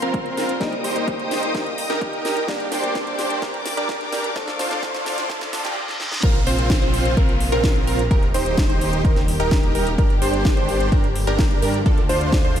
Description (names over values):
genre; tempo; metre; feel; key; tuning
EDM, festival progressive house; 128 BPM; 4/4; straight; Bb major; A4 = 444 Hz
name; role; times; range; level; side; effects
fingerpicked swing-style acoustic guitar; accompaniment; 0.0-5.8 s; G2 to Bb4; -30 LUFS; left 2 dB; sidechain pumping, diffuse ambient delay
warm studio string section; sustained chords; 0.0-12.6 s; C3 to Eb6; -28 LUFS; equal; sidechain pumping, low-pass filter
dense compressed supersaw; riff; 0.0-12.6 s; C4 to C5; -24 LUFS; right 1 dB; sidechain pumping, diffuse ambient delay
wide detuned saw bass; bass; 0.0-12.6 s; Eb1 to G2; -27 LUFS; equal; chorus, sidechain pumping, high-pass filter
house drum kit; drums; 0.0-12.6 s; crash cymbal, hi-hat, snare drum; -29 LUFS; equal; overdrive
riser, reverse cymbal and downlifter; sound effects; 0.0-10.0 s; none; -34 LUFS; equal; none
electronic kick drum; drums; 0.1-12.4 s; none; -20 LUFS; equal; overdrive
wide unison pluck; arpeggios; 6.2-12.6 s; A4 to C5; -27 LUFS; right 1 dB; sidechain pumping, diffuse ambient delay
room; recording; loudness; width
moderate plate reverb, RT60 1.6 s, digital ambience; dreamy mix soaked in reverb, high-pass filter; -18 LUFS; side -10 dB against mid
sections
0.0-6.2 A section; 6.2-12.6 B section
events
build-up 0.0-6.2; drum fill 0.0-5.8, 5.9-6.2; filter sweep on supersaw synth 0.0-6.2; filter sweep 0.0-6.2; reverse cymbal 5.3-6.2; drop 6.2-12.6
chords
0.0 Bbsus2; 0.6 Eb; 2.5 Gm; 4.4 Dm; 6.2 Bbsus2; 8.1 Eb; 10.0 Gm; 11.9 Dm